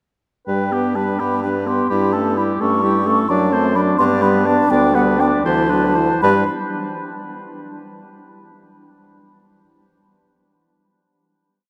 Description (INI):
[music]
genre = quick classical-period movement for wind quintet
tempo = 74-87 BPM (dotted quarters)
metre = 6/8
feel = rubato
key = G major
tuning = A4 = 440 Hz
[part]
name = mellow hollow concert flute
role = melody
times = 0.5-6.5 s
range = F#5 to C#6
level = -24 LUFS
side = equal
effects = none
[part]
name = warm oboe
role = second line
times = 0.5-6.4 s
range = G4 to D5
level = -25 LUFS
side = equal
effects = none
[part]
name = warm French horn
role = accompaniment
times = 0.5-6.4 s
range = E3 to B3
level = -24 LUFS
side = equal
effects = none
[part]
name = warm clarinet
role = accompaniment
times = 0.5-6.4 s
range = B3 to E4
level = -25 LUFS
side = equal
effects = none
[part]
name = clear bassoon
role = bass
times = 0.5-6.4 s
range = D2 to G2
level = -23 LUFS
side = equal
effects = none
[sound]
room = wet cathedral reverb, RT60 4.9 s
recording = in a vast, echoing space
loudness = -17 LUFS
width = mono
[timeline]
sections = 0.5-6.2 theme; 6.2-7.7 final chord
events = slowing down 2.6-6.2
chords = 0.5 G; 1.9 A7/G; 3.3 D7/F#; 4.0 G; 4.7 G/D; 5.4 D13; 6.2 G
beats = | 0.48 1.20 | 1.90 2.61 | 3.30 3.99 | 4.70 5.45 | 6.23